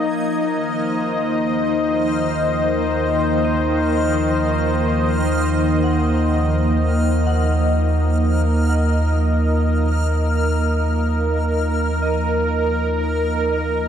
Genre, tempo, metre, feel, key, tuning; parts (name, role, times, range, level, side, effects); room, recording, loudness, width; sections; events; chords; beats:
ambient; free time; A4 = 440 Hz
warm analog pad; sustained chords; 0.0-13.9 s; Eb3 to Eb5; -20 LUFS; equal; chorus, tremolo
soft synth bell; arpeggios; 0.0-13.9 s; Eb5 to Gb5; -34 LUFS; left 1 dB
round analog bass; bass; 0.0-13.9 s; Eb2; -20 LUFS; right 1 dB
bowed-like drone; drone; 0.0-13.9 s; F3 to Bb3; -26 LUFS; left 2 dB; built-in reverb
backwards swelling texture; texture; 0.0-13.9 s; F6; -31 LUFS; left 1 dB; built-in reverb
wet cathedral reverb, RT60 5.6 s; in a vast, echoing space; -17 LUFS; side -8 dB against mid
0.0-13.9 A section
0.0 Cm7b5/Eb
free time